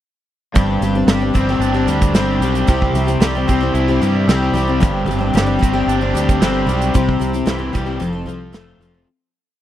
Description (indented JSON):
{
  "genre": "folk rock and heartland rock",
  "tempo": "113 BPM",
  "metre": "4/4",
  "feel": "straight",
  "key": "unclear",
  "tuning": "A4 = 439 Hz",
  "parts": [
    { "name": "cranked stack guitar", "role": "riff", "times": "0.5-9.1 s", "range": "F2 to E4", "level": "-20 LUFS", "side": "right 2 dB", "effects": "overdrive" },
    { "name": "picked twelve-string acoustic guitar", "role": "accompaniment", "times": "0.6-9.1 s", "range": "G2 to A4", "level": "-19 LUFS", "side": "left 4 dB", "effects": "none" },
    { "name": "fingered electric bass", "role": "bass", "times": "0.6-9.0 s", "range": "F1 to G2", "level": "-21 LUFS", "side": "right 1 dB", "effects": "none" },
    { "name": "natural country drum kit", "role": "drums", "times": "0.6-8.9 s", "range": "hi-hat, kick drum, snare drum", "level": "-17 LUFS", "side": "right 1 dB", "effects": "none" }
  ],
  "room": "studio reverb",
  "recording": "dry, close 1970s-style studio recording",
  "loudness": "-14 LUFS",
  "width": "side -12 dB against mid",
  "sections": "0.6-9.1 verse",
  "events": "fade-out 6.9-9.1",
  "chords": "0.6 Gsus4; 2.7 C; 4.8 Gsus4; 6.9 C; 8.0 F",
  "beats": "| 0.56 1.09 1.62 2.15 | 2.69 3.22 3.75 4.28 | 4.82 5.35 5.88 6.42 | 6.95 7.48 8.01 8.54"
}